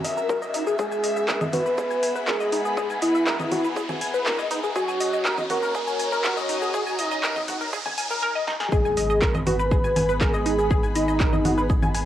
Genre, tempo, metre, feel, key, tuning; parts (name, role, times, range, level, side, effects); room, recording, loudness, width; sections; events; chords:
melodic techno; 121 BPM; 4/4; straight; G# minor; A4 = 443 Hz
tight sequenced synth; arpeggios; 0.0-12.0 s; D#4 to G#5; -27 LUFS; equal; chorus, phaser, cassette tape, sidechain pumping, tape echo
deep house drum kit; drums; 0.0-12.0 s; congas, handclaps, hi-hat, shaker, snare drum; -29 LUFS; equal; overdrive, cassette tape
riser and impact; sound effects; 0.0-10.7 s; -34 LUFS; equal
dark studio string section; texture; 0.0-12.1 s; B3 to B5; -32 LUFS; left 2 dB; sidechain pumping, cassette tape
electronic kick drum; drums; 0.3-11.8 s; -25 LUFS; equal; high-pass filter on kick, cassette tape, high-pass filter on room
wide unison lead; melody; 0.8-11.6 s; D#4 to B4; -26 LUFS; equal; sidechain pumping, cassette tape, analog delay
round analog bass; bass; 8.7-12.1 s; G#1; -28 LUFS; equal; sidechain pumping
moderate spring reverb, RT60 1.3 s, digital ambience; home recording on cassette, high-pass filter; -21 LUFS; side -12 dB against mid
0.0-8.7 A section; 8.7-12.1 B section
build-up 0.0-8.7; riser 0.0-8.2; filter sweep 0.0-8.7; drum fill 8.5; drop 8.7-12.1; impact 8.7-10.7
0.0 F#7; 0.8 E; 4.8 D#m7; 8.7 G#m